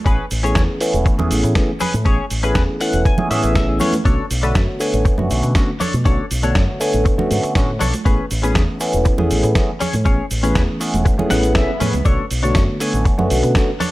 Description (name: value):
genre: nu-disco, nu disco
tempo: 120 BPM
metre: 4/4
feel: straight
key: unclear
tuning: A4 = 440 Hz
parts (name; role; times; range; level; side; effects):
- barky tine electric piano; accompaniment; 0.1-13.7 s; D3 to G#5; -20 LUFS; equal; phaser, low-pass filter, slapback echo
- direct-recorded clean electric guitar; riff; 0.1-13.9 s; C#4 to G#5; -24 LUFS; left 4 dB; analog chorus, slapback echo
- fingered electric bass with an envelope filter; bass; 0.1-13.5 s; E1 to B2; -20 LUFS; equal; none
- dusty soul sampler-style drum kit; drums; 0.1-13.9 s; hi-hat, snare drum; -25 LUFS; right 1 dB; studio reverb
- electronic kick drum; drums; 0.1-13.7 s; none; -17 LUFS; equal; studio reverb
- tube shaker and congas; percussion; 0.1-13.9 s; none; -25 LUFS; right 4 dB; none
- swell; sound effects; 11.3-12.1 s; none; -30 LUFS; equal; none
room: digital ambience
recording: none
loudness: -15 LUFS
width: side -18 dB against mid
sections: 0.0-13.9 A section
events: clean electric guitar fill 2.6-4.1, 11.1-12.1; swell 11.3-12.1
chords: 0.1 Amaj9; 4.1 Bm9; 8.1 Amaj9; 12.1 Bm9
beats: | 0.06 0.56 1.06 1.56 | 2.06 2.56 3.06 3.56 | 4.06 4.56 5.06 5.56 | 6.06 6.56 7.06 7.56 | 8.06 8.56 9.06 9.56 | 10.06 10.56 11.06 11.56 | 12.06 12.56 13.06 13.56